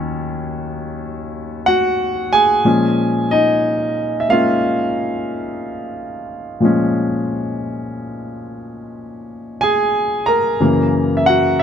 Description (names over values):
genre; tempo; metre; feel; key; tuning
solo jazz; 60 BPM; 4/4; swing 66% on 8ths; Bb minor; A4 = 440 Hz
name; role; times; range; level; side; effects
warm concert grand piano; solo; 0.0-11.6 s; Eb2 to Bb5; -16 LUFS; equal; none
room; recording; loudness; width
little or no reverb; close, detailed microphones; -15 LUFS; side -8 dB against mid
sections
0.0-11.6 A section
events
none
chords
0.0 Ebm7; 2.6 Bbm7; 10.6 Gb7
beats
0.65 1.64 | 2.64 3.63 4.63 5.62 | 6.62 7.62 8.61 9.61 | 10.60 11.60